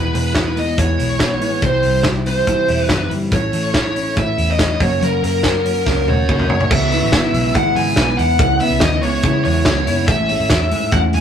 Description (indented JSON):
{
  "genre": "jangly indie pop",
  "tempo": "142 BPM",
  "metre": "4/4",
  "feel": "straight",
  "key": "unclear",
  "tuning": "A4 = 438 Hz",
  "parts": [
    { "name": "high-gain lead guitar", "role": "melody", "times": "0.0-11.2 s", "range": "A#4 to G#5", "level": "-19 LUFS", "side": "equal", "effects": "distortion" },
    { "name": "fingerpicked steel-string acoustic guitar", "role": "accompaniment", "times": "0.0-11.2 s", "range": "E2 to G#4", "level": "-24 LUFS", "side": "right 3 dB", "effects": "none" },
    { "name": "twelve-string electric guitar", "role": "arpeggios", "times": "0.0-11.2 s", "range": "A2 to F#4", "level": "-23 LUFS", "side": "left 3 dB", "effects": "none" },
    { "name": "vintage muted picked electric bass", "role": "bass", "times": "0.0-11.2 s", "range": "E1 to C#3", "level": "-21 LUFS", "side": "equal", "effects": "none" },
    { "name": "loose indie drum kit", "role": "drums", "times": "0.1-11.2 s", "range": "crash cymbal, hi-hat, kick drum, snare drum, toms", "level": "-19 LUFS", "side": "equal", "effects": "none" }
  ],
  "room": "wet studio reverb, RT60 0.6 s",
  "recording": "rough rehearsal-room recording, tube saturation",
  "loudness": "-14 LUFS",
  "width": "side -8 dB against mid",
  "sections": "0.0-6.7 A section; 6.7-11.2 B section",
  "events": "drum fill 5.9-6.7",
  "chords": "0.0 E; 1.6 C; 3.3 A; 4.8 F#; 6.7 C#m7; 10.1 Amaj7"
}